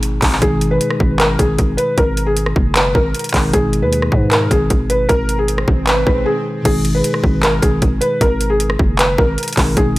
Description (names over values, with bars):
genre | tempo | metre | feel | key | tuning
hip hop, trap | 154 BPM | 4/4 | half-time | G# minor | A4 = 441 Hz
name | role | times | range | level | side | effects
mellow tine electric piano | accompaniment | 0.0-10.0 s | B2 to G#4 | -22 LUFS | left 1 dB | none
growling 808-style bass | bass | 0.0-10.0 s | F#1 to G#2 | -19 LUFS | equal | none
trap drum kit | drums | 0.0-10.0 s | crash cymbal, handclaps, hi-hat, kick drum, rim click | -16 LUFS | equal | none
felt-muted upright piano | melody | 0.4-10.0 s | G#4 to B4 | -18 LUFS | equal | digital delay
swell | sound effects | 5.4-6.7 s | none | -28 LUFS | right 3 dB | none
room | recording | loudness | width
little or no reverb | none | -13 LUFS | side -18 dB against mid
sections
0.0-6.7 A section; 6.7-10.0 B section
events
break 0.0-0.4, 6.3-6.7; swell 5.4-6.7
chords
0.0 G#m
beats
0.03 | 0.42 0.81 1.20 1.59 | 1.98 2.37 2.76 3.15 | 3.54 3.92 4.31 4.70 | 5.09 5.48 5.87 6.26 | 6.65 7.04 7.43 7.82 | 8.21 8.60 8.99 9.38 | 9.77